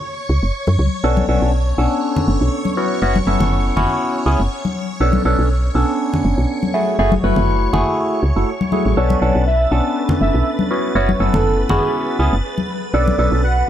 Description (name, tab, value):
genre	deep house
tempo	121 BPM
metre	4/4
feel	swing 54% on 16ths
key	B dorian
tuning	A4 = 440 Hz
part	string machine, violins	texture	0.0-13.7 s	B4 to A6	-28 LUFS	right 1 dB	ensemble chorus
part	woody FM bass	bass	0.3-13.6 s	F#1 to F#2	-17 LUFS	equal	tube saturation
part	congas	percussion	0.7-13.2 s	none	-22 LUFS	left 4 dB	none
part	barky tine electric piano	stabs	1.0-13.4 s	A3 to B4	-19 LUFS	equal	overdrive, phaser, dub echo
part	warm velvety synth lead	melody	9.0-13.7 s	G#4 to F#5	-22 LUFS	right 2 dB	chorus, tape echo
room	light reverb, digital ambience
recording	dark, warm production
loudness	-15 LUFS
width	side -10 dB against mid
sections	0.0-13.7 A section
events	none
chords	0.0 F#5; 1.0 Bm9; 2.8 F#7sus4; 4.8 Bm9; 6.7 F#m9; 9.0 Bm9; 10.7 F#7sus4; 12.7 Bm9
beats	0.05 0.54 | 1.04 1.53 2.03 2.52 | 3.02 3.52 4.01 4.51 | 5.00 5.50 6.00 6.49 | 6.99 7.48 7.98 8.48 | 8.97 9.47 9.96 10.46 | 10.96 11.45 11.95 12.44 | 12.94 13.43